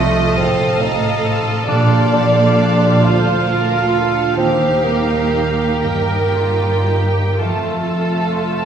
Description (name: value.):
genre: classical, slow romantic movement for symphony orchestra.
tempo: 36-46 BPM (dotted quarters).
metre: 6/8.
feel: rubato.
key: Bb major.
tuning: A4 = 440 Hz.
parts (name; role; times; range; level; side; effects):
warm symphonic violin section; melody; 0.0-8.7 s; F4 to Eb5; -23 LUFS; left 1 dB; none.
rich symphonic violin section; second line; 0.0-8.7 s; F4 to A5; -23 LUFS; equal; none.
mellow bassoon; accompaniment; 0.0-8.7 s; A3 to F4; -18 LUFS; right 3 dB; none.
warm symphonic viola section; accompaniment; 0.0-8.7 s; Eb4 to Bb4; -25 LUFS; right 2 dB; none.
concert harp; arpeggios; 0.0-8.7 s; Bb2 to C6; -23 LUFS; left 2 dB; none.
clear symphonic double bass section; bass; 0.0-8.7 s; F1 to Eb2; -23 LUFS; right 2 dB; none.
rich symphonic cello section; bass; 0.0-8.7 s; D2 to C3; -21 LUFS; right 2 dB; none.
timpani; percussion; 1.7-3.0 s; Bb2; -22 LUFS; right 2 dB; none.
room: wet recital hall reverb, RT60 1.4 s.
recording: recorded in a church or concert hall, studio ambience.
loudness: -13 LUFS.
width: side -8 dB against mid.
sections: 0.0-8.7 A section.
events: none.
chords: 0.0 F7; 1.7 Bb; 4.4 Eb; 7.4 F.